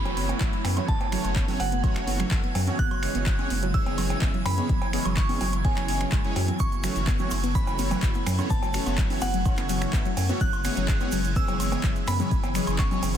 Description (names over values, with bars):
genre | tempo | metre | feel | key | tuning
progressive house | 126 BPM | 4/4 | straight | F# minor | A4 = 440 Hz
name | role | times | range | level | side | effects
glassy synth bell | melody | 0.0-13.2 s | F#5 to F#6 | -33 LUFS | right 1 dB | chorus, sidechain pumping, digital delay
evolving wavetable pad | sustained chords | 0.0-13.2 s | C#3 to F#4 | -35 LUFS | left 1 dB | ensemble chorus, built-in reverb, sidechain pumping
soft supersaw | stabs | 0.0-13.0 s | E3 to E5 | -34 LUFS | right 2 dB | phaser, cassette tape, sidechain pumping, digital delay
downlifter | sound effects | 0.0-2.8 s | none | -42 LUFS | equal | none
drifting glass-harmonics texture | texture | 0.0-13.2 s | G#6 | -41 LUFS | right 7 dB | chorus, built-in reverb, sidechain pumping
soft round pluck | arpeggios | 0.1-13.2 s | F#3 to F#4 | -32 LUFS | left 1 dB | chorus, sidechain pumping, digital delay
saturated sub bass | bass | 0.1-13.2 s | F#1 to F#2 | -30 LUFS | equal | sidechain pumping
deep house drum kit | drums | 0.1-13.2 s | finger snaps, handclaps, hi-hat, ride cymbal | -35 LUFS | equal | overdrive
cowbell, congas and woodblock | percussion | 0.1-13.2 s | none | -36 LUFS | right 4 dB | sidechain pumping on perc
electronic kick drum | drums | 0.4-12.9 s | none | -25 LUFS | equal | none
egg shaker | percussion | 6.6-13.2 s | none | -42 LUFS | right 4 dB | none
room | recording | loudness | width
little or no reverb | dense, heavily limited modern master | -23 LUFS | side -9 dB against mid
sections
0.0-13.2 A section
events
none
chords
0.0 F#m7; 2.8 C#m/F#; 6.6 F#m7; 10.4 C#m/F#